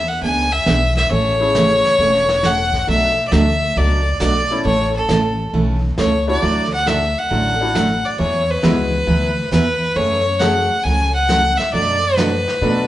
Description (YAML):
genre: country, western swing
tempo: 136 BPM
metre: 4/4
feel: swing 68% on 8ths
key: A major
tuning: A4 = 440 Hz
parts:
  - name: clear fiddle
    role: melody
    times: 0.0-12.9 s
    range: A4 to G#5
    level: -17 LUFS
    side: left 1 dB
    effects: none
  - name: bright upright piano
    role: accompaniment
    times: 0.0-12.9 s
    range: G#3 to A4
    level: -24 LUFS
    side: left 3 dB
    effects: none
  - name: upright bass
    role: bass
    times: 0.0-12.9 s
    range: E1 to B2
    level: -21 LUFS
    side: equal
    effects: none
  - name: picked steel-string acoustic guitar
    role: accompaniment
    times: 0.2-12.9 s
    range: B2 to A4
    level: -20 LUFS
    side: right 2 dB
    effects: none
  - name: vintage brush drum kit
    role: drums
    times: 0.2-12.9 s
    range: brushed snare drum, hi-hat, kick drum, snare drum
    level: -28 LUFS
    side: equal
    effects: none
room: wet large studio reverb, RT60 1.4 s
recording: band playing live in one room, nothing above 11.0 kHz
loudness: -14 LUFS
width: side -14 dB against mid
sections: 0.0-12.9 A section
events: none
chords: 0.0 E7; 1.1 Amaj7; 2.9 Bm7; 4.6 A; 6.4 Dadd9; 8.2 Eadd9; 10.0 F#madd9; 11.7 Bm7/F#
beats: 0.22 0.66 | 1.11 1.55 1.99 2.43 | 2.88 3.32 3.76 4.21 | 4.65 5.09 5.53 5.98 | 6.42 6.86 7.31 7.75 | 8.19 8.63 9.08 9.52 | 9.96 10.40 10.85 11.29 | 11.73 12.18 12.62